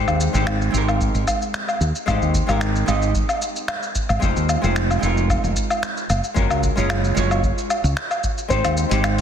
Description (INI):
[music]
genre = sunset chillout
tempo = 112 BPM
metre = 4/4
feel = straight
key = Ab major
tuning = A4 = 440 Hz
[part]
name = archtop guitar, miked and amplified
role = accompaniment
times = 0.0-9.2 s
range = Ab3 to Eb5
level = -24 LUFS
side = moving between left 5 dB and right 5 dB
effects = auto-pan, tape echo, shimmer reverb
[part]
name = woody fretless electric bass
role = bass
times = 0.0-9.2 s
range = F1 to Eb2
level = -21 LUFS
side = equal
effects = none
[part]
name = dusty soul sampler-style drum kit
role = drums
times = 0.1-9.2 s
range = finger snaps, hi-hat, shaker, woodblock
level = -24 LUFS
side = left 1 dB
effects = soft clipping on snare
[part]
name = electronic kick drum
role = drums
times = 1.0-8.6 s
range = none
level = -24 LUFS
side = equal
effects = none
[part]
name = dark grand piano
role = melody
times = 8.5-9.2 s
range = C5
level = -25 LUFS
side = left 1 dB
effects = tape echo, shimmer reverb
[sound]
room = moderate recital hall reverb, RT60 1.5 s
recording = dense, heavily limited modern master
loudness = -18 LUFS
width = side -8 dB against mid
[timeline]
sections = 0.0-9.2 A section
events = none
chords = 0.0 Abmaj7; 4.2 Fm7; 6.1 Gbmaj9; 8.5 Abmaj7